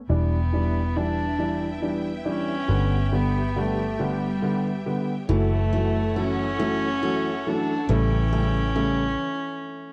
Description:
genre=six-eight pop ballad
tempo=46 BPM (dotted quarters)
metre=6/8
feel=straight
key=unclear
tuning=A4 = 440 Hz
part: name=vintage muted fingered electric bass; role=bass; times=0.0-9.1 s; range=E1 to A1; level=-27 LUFS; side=equal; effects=none
part: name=warm cello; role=melody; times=0.1-9.9 s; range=G3 to D4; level=-30 LUFS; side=equal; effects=none
part: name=warm grand piano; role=accompaniment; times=0.1-9.0 s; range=C#3 to D4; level=-29 LUFS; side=equal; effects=none
part: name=clear studio string section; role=sustained chords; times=0.1-9.2 s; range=B3 to G5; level=-38 LUFS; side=equal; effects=none
part: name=picked steel-string acoustic guitar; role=arpeggios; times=5.3-9.8 s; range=E3 to F#4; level=-36 LUFS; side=equal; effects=none
room=light reverb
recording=dry, close 1970s-style studio recording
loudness=-24 LUFS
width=mono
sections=0.1-9.9 A section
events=stop 9.2-9.9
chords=0.1 Em7; 2.7 G; 5.3 F#m7; 7.9 A7

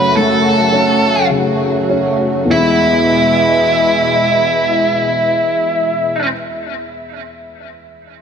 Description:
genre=pop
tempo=48-55 BPM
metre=4/4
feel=straight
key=E major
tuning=A4 = 439 Hz
part: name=octave-fuzz lead guitar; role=melody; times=0.0-6.3 s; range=E4 to B4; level=-15 LUFS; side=equal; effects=distortion, ping-pong delay
part: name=warm baby grand piano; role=accompaniment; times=0.0-8.2 s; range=E2 to C#4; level=-18 LUFS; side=left 2 dB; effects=none
part: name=lush unison pad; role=sustained chords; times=0.0-6.3 s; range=B2 to F#4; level=-18 LUFS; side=right 1 dB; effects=chorus
room=moderate lush hall reverb, RT60 1.8 s, small room ambience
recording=none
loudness=-11 LUFS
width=side -7 dB against mid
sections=0.0-2.5 A section; 2.5-7.5 B section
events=slowing down 0.0-2.5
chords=0.0 F#m; 2.5 E

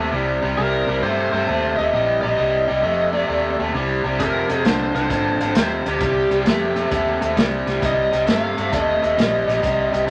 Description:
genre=electric blues shuffle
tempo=132 BPM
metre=4/4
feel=swing 67% on 8ths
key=C minor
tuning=A4 = 442 Hz
part: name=overdriven electric guitar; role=riff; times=0.0-10.1 s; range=F2 to A3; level=-23 LUFS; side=equal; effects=none
part: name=vintage muted fingered electric bass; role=bass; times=0.0-10.1 s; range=F1 to G2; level=-30 LUFS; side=equal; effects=none
part: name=biting lead guitar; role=melody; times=0.6-10.1 s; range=G4 to F5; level=-24 LUFS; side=equal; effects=overdrive
part: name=crunchy breakbeat drum kit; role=drums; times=4.2-10.0 s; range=hi-hat, kick drum, snare drum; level=-24 LUFS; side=equal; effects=none
room=wet large studio reverb, RT60 0.8 s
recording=none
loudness=-20 LUFS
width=mono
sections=0.0-10.1 A section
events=none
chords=0.0 Cm; 4.2 Fm7; 6.0 Cm

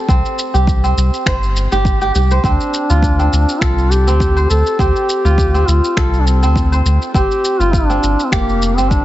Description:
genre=organic downtempo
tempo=102 BPM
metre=4/4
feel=swing 54% on 16ths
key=D minor pentatonic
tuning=A4 = 437 Hz
part: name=kora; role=arpeggios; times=0.0-9.0 s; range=C4 to C5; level=-20 LUFS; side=right 2 dB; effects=low-pass filter, digital delay
part: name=warm sub bass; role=bass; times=0.1-9.0 s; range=F1 to D2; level=-14 LUFS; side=equal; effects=sidechain pumping
part: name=electronic kick drum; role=drums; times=0.1-9.0 s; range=none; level=-17 LUFS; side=equal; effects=none
part: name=electronic shaker and finger snaps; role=drums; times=0.1-9.0 s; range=none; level=-23 LUFS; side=left 1 dB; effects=none
part: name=warm duduk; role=melody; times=2.4-9.0 s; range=Bb3 to A4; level=-18 LUFS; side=equal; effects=digital delay
room=little or no reverb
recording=heavily compressed radio sound, multiband compression, nothing above 7.8 kHz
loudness=-12 LUFS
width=side -14 dB against mid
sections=0.0-9.0 A section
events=none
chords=0.1 C5; 2.4 Dm7; 7.1 G7sus4

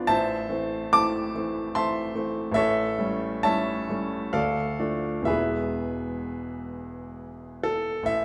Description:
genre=classical, romantic character piece for solo piano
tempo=62-78 BPM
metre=3/4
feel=rubato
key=A minor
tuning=A4 = 439 Hz
part: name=clear grand piano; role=solo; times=0.0-8.2 s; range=E1 to D6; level=-27 LUFS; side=equal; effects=none
room=wet recital hall reverb, RT60 1.5 s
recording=none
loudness=-27 LUFS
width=mono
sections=0.0-8.1 A section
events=none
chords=0.1 Am; 2.6 A7; 4.3 Dm; 5.3 E

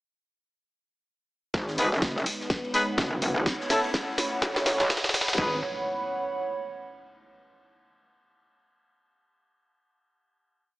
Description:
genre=bass house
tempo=125 BPM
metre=4/4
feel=swing 59% on 16ths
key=G# phrygian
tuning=A4 = 440 Hz
part: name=dark analog pad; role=sustained chords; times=2.3-5.6 s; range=G#3 to C#5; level=-35 LUFS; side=equal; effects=chorus, phaser, sidechain pumping
part: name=metallic wobble bass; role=bass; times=1.5-5.6 s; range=F#1 to B1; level=-28 LUFS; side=equal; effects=chorus, tube saturation, sidechain pumping
part: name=electronic kick drum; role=drums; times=1.5-5.5 s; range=none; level=-29 LUFS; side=equal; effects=studio reverb
part: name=garage drum kit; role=drums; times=1.5-5.4 s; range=hi-hat, snare drum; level=-29 LUFS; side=equal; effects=studio reverb
part: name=modern studio drum kit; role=drums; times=1.5-5.3 s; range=hi-hat, ride cymbal, snare drum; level=-40 LUFS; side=equal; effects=none
part: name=riser and impact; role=sound effects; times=2.9-7.3 s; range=none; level=-37 LUFS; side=equal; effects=none
part: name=warbly tape-like pad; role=texture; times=2.7-7.3 s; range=C#5 to B5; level=-33 LUFS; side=right 2 dB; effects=chorus, built-in reverb, phaser, sidechain pumping
part: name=warm horn section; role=stabs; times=1.8-5.6 s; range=A3 to B4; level=-28 LUFS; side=left 1 dB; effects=sidechain pumping, digital delay
room=moderate digital room reverb, RT60 1.0 s, small room ambience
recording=high-pass filter, small speaker sound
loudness=-25 LUFS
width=side -18 dB against mid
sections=1.5-5.4 build; 5.4-7.3 final chord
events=build-up 1.5-5.4; drum fill 1.5-5.4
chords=1.5 G#m; 3.5 A; 5.4 G#m

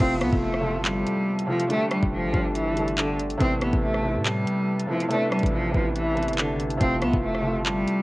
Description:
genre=hip hop, drill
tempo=141 BPM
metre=4/4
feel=half-time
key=unclear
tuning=A4 = 438 Hz
part: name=clear cello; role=melody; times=0.0-8.0 s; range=D3 to C4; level=-25 LUFS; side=equal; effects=none
part: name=felt-muted upright piano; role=accompaniment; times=0.0-8.0 s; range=C3 to A4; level=-28 LUFS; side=right 1 dB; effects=none
part: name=deep dark ambient pad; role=sustained chords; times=0.0-8.0 s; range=E4 to A5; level=-35 LUFS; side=left 1 dB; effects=chorus, built-in reverb
part: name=hard-hitting 808-style bass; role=bass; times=0.0-7.9 s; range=F1 to A2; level=-30 LUFS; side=equal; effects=none
part: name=drill drum kit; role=drums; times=0.0-8.0 s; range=crash cymbal, handclaps, hi-hat, kick drum, rim click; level=-26 LUFS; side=equal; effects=overdrive, vintage 12-bit sampler grit
part: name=downlifter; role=sound effects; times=0.0-3.4 s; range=none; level=-42 LUFS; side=left 2 dB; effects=none
room=light reverb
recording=home recording on cassette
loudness=-22 LUFS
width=side -20 dB against mid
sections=0.0-8.0 A section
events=none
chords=0.0 F; 1.7 Gsus2; 3.4 Amadd9; 6.8 F

